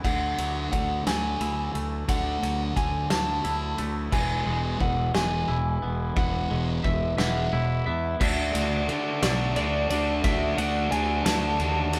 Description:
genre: post-rock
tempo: 59 BPM (dotted quarters)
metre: 6/8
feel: straight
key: D lydian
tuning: A4 = 440 Hz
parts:
  - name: electric slide guitar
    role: melody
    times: 0.0-12.0 s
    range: D5 to A5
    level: -32 LUFS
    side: equal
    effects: none
  - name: twangy electric guitar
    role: arpeggios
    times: 0.0-8.2 s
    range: D3 to E4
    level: -37 LUFS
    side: equal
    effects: none
  - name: thick fuzz guitar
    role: riff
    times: 0.0-7.8 s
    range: E2 to D4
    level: -34 LUFS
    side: equal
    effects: distortion
  - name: fuzz fingered electric bass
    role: bass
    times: 0.0-12.0 s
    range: E1 to D3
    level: -32 LUFS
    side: equal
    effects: overdrive
  - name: loose indie drum kit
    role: drums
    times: 0.0-12.0 s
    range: crash cymbal, kick drum, ride cymbal, snare drum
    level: -32 LUFS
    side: equal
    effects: none
  - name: distorted electric guitar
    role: riff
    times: 8.2-12.0 s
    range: D3 to F#4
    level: -30 LUFS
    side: equal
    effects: distortion
room: moderate studio reverb, RT60 0.7 s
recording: band playing live in one room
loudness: -26 LUFS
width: mono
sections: 0.0-8.2 A section; 8.2-12.0 B section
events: build-up 0.0-8.2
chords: 0.0 Dadd9; 4.1 E; 8.2 Dadd9

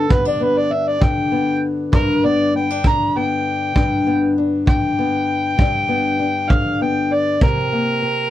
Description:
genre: acoustic country blues, solo or duo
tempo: 66 BPM (dotted quarters)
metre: 12/8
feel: straight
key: G major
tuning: A4 = 440 Hz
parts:
  - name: overdriven harmonica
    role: melody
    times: 0.0-8.3 s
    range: A4 to Bb5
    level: -20 LUFS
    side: equal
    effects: none
  - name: fingerpicked old ladder-braced acoustic guitar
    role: accompaniment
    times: 0.0-8.3 s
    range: G2 to D4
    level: -19 LUFS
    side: left 2 dB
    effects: none
  - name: kick drum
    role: drums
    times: 0.1-7.6 s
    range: none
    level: -18 LUFS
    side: equal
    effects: none
room: moderate booth ambience, RT60 0.3 s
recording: vinyl crackle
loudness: -15 LUFS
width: side -13 dB against mid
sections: 0.0-8.3 A section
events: harmonica solo 0.0-8.3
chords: 0.0 G; 7.4 C7(no3)

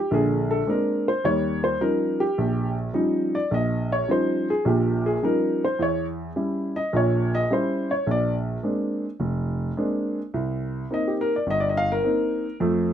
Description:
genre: solo jazz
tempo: 106 BPM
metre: 4/4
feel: swing 69% on 8ths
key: unclear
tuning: A4 = 442 Hz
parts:
  - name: dark upright piano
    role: solo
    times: 0.0-12.9 s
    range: F1 to F5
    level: -22 LUFS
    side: equal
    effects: none
room: light reverb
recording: dark, warm production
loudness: -22 LUFS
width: side -9 dB against mid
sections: 0.0-12.9 A section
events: upright piano solo 0.0-12.9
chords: 0.1 Bb9; 1.2 Eb9; 5.8 Edim7; 8.1 Bb9; 10.3 Cm7

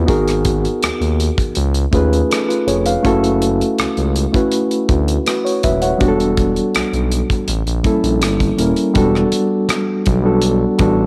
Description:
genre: lush 1970s-style soul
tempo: 81 BPM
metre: 4/4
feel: straight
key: unclear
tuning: A4 = 439 Hz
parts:
  - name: mellow reed electric piano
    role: accompaniment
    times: 0.0-11.1 s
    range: G3 to F#5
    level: -18 LUFS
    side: equal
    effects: fast tremolo
  - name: smooth gliding synth bass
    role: bass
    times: 0.0-11.1 s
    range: Eb1 to D#2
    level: -21 LUFS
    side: equal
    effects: none
  - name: modern studio drum kit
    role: drums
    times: 0.1-11.0 s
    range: hi-hat, kick drum, rim click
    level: -23 LUFS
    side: equal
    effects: none
  - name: congas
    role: percussion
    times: 9.0-11.0 s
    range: none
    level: -30 LUFS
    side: equal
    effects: none
room: light reverb, studio reverb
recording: none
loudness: -16 LUFS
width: mono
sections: 0.0-9.0 A section; 9.0-11.1 B section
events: none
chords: 0.1 G#m9; 1.6 C#7b13; 3.0 F#m7; 6.0 Em11; 7.5 A7b9; 9.0 Em11

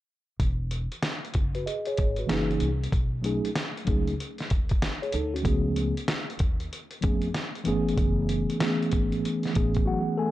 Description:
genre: hip hop, jazz-hop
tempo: 95 BPM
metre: 4/4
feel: swing 65% on 16ths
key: E major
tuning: A4 = 440 Hz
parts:
  - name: upright bass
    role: bass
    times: 0.4-9.8 s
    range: E1 to E#2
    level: -30 LUFS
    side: equal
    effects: none
  - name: lo-fi sampler-style drum kit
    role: drums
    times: 0.4-9.9 s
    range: hi-hat, kick drum, snare drum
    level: -28 LUFS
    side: equal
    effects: none
  - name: mellow tine electric piano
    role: accompaniment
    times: 1.5-10.3 s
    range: E3 to G#5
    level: -27 LUFS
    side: equal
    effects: medium stereo tremolo, low-pass filter
room: light reverb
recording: dark, warm production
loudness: -25 LUFS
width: side -15 dB against mid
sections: 0.4-10.3 A section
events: filter sweep on tine electric piano 0.4-10.3; tine electric piano fill 9.6-10.3; silent gap 9.9-10.3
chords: 0.4 E; 2.3 F#13; 2.9 B13; 5.5 C#7b13; 8.0 F#m11

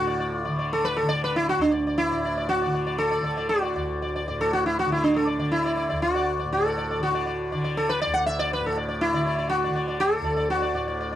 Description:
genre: indian classical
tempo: 120 BPM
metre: 7/4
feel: straight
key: unclear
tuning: A4 = 441 Hz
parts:
  - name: sitar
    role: melody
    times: 0.0-11.2 s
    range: D4 to F#5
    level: -23 LUFS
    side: equal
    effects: none
  - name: tanpura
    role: drone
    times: 0.0-11.2 s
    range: D2 to D3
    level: -30 LUFS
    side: equal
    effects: none
room: little or no reverb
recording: dry, close 1970s-style studio recording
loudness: -22 LUFS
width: side -12 dB against mid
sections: 0.0-11.2 A section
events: speeding up 0.0-11.2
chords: none

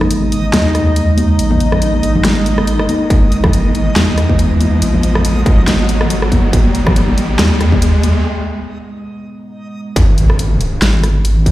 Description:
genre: deep dubstep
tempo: 140 BPM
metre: 4/4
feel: swing 56% on 16ths, half-time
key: G# phrygian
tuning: A4 = 440 Hz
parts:
  - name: dark analog pad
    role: sustained chords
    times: 0.0-10.0 s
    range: G#3 to D#4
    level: -20 LUFS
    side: right 2 dB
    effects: chorus
  - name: deep soft wobble bass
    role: bass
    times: 0.0-11.5 s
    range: G#1 to D#2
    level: -15 LUFS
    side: equal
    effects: chorus, tube saturation
  - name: dubstep drum kit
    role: drums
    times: 0.0-11.5 s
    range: handclaps, hi-hat, rim click, snare drum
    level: -19 LUFS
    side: equal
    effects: none
  - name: congas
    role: percussion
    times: 0.0-8.1 s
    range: none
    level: -20 LUFS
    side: left 1 dB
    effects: dub echo
  - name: riser and impact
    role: sound effects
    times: 0.0-11.5 s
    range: none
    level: -21 LUFS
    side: equal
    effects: none
  - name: backwards swelling texture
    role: texture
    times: 0.0-8.2 s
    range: D#4 to D#5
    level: -23 LUFS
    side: left 1 dB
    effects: built-in reverb
  - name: electronic kick drum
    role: drums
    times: 3.1-11.5 s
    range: none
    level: -13 LUFS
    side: equal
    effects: distortion
room: light reverb, digital ambience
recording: played on a big sound system in a bare room, large studio reverb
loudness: -11 LUFS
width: side -15 dB against mid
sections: 0.0-10.0 A section; 10.0-11.5 B section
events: build-up 0.0-10.0; riser 0.0-8.2; break 8.2-10.0; drop 10.0-11.5; impact 10.0-11.5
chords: 0.0 G#5

